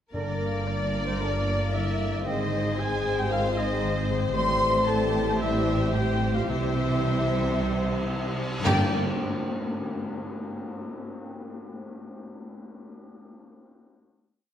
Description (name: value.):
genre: cinematic, heroic adventure film score.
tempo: 113 BPM.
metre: 4/4.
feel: straight.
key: G dorian.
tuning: A4 = 436 Hz.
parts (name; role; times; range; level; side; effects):
clear symphonic violin section; melody; 0.1-9.0 s; C5 to D5; -34 LUFS; left 6 dB; none.
mellow hollow concert flute; second line; 0.1-9.0 s; Bb4 to C6; -35 LUFS; left 1 dB; none.
warm oboe; second line; 0.1-8.9 s; G4 to C6; -35 LUFS; right 3 dB; none.
warm symphonic violin section; second line; 0.1-9.0 s; Bb4 to C6; -35 LUFS; left 2 dB; none.
rich studio viola section; accompaniment; 0.1-9.0 s; Bb3 to Bb4; -34 LUFS; equal; none.
clear trombone section; sustained chords; 0.1-8.9 s; D3 to D4; -36 LUFS; right 3 dB; none.
warm French horn section; sustained chords; 0.1-8.9 s; Bb3 to C5; -32 LUFS; left 4 dB; none.
concert harp; arpeggios; 0.1-9.0 s; G2 to D6; -37 LUFS; left 7 dB; none.
rich studio cello section; bass; 0.1-9.0 s; G2 to C3; -30 LUFS; right 2 dB; none.
rich symphonic double bass section; bass; 0.1-9.0 s; G1 to C2; -31 LUFS; right 3 dB; none.
timpani; percussion; 0.1-0.9, 8.7-8.9 s; G2; -36 LUFS; equal; none.
cymbal swell and tam-tam; percussion; 4.4-10.7 s; none; -34 LUFS; left 2 dB; none.
room: wet concert hall reverb, RT60 2.5 s.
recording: none.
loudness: -24 LUFS.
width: side -10 dB against mid.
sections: 0.1-8.7 theme; 8.7-10.8 final chord.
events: band accent 8.7-9.2.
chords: 0.1 Gm; 2.3 Ab; 4.4 Am7; 6.5 C; 8.7 Gm.